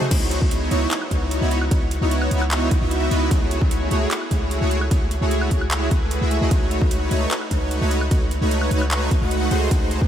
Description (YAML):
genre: future bass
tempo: 150 BPM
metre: 4/4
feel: half-time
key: C# minor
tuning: A4 = 440 Hz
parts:
  - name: soft supersaw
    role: riff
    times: 0.0-10.1 s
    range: A3 to F#5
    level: -23 LUFS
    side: equal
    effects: analog chorus, sidechain pumping, analog delay
  - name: trap drum kit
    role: drums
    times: 0.0-10.0 s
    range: crash cymbal, handclaps, hi-hat, ride cymbal, toms, woodblock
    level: -29 LUFS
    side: equal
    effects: studio reverb
  - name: warm 808-style bass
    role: bass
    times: 0.1-10.1 s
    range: C#2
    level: -22 LUFS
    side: equal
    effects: sidechain pumping
  - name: electronic kick drum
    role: drums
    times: 0.1-10.1 s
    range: none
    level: -21 LUFS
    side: equal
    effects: studio reverb
room: moderate huge ambient reverb, RT60 8.6 s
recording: dreamy mix soaked in reverb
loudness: -18 LUFS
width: side -10 dB against mid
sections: 0.1-10.1 A section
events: drop 0.1-10.1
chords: 0.1 C#m11; 3.3 F#m9/C#; 6.5 B9/C#; 9.5 G#7b9/C#